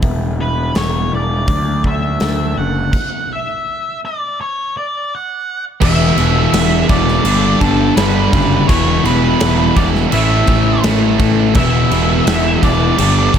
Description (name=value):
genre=quiet-loud alternative rock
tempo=83 BPM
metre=4/4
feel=straight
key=E dorian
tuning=A4 = 438 Hz
part: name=semi-hollow electric guitar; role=arpeggios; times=0.0-2.9 s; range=D3 to E4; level=-24 LUFS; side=left 7 dB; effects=phaser
part: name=fuzz picked electric bass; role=bass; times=0.0-13.4 s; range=E1 to D2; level=-17 LUFS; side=equal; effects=overdrive
part: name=huge arena drum kit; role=drums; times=0.0-13.4 s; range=crash cymbal, hi-hat, kick drum, snare drum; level=-18 LUFS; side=equal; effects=none
part: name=octave-fuzz lead guitar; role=melody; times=0.4-13.4 s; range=A4 to F#5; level=-20 LUFS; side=equal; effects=distortion, tape echo
part: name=distorted electric guitar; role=riff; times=5.8-13.4 s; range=G2 to E4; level=-20 LUFS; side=right 2 dB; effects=overdrive
part: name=high-gain distorted guitar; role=riff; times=5.8-13.4 s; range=E2 to A3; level=-19 LUFS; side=right 12 dB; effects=distortion
part: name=sludgy distorted guitar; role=riff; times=5.8-13.4 s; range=E2 to A3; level=-18 LUFS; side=left 9 dB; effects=overdrive
room=little or no reverb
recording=none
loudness=-12 LUFS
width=side -8 dB against mid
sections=0.0-5.8 A section; 5.8-13.4 B section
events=stop 2.9-5.8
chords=0.0 Em; 1.5 D; 2.9 N.C.; 5.8 Em; 7.3 G; 8.7 Em; 10.1 A; 11.6 Em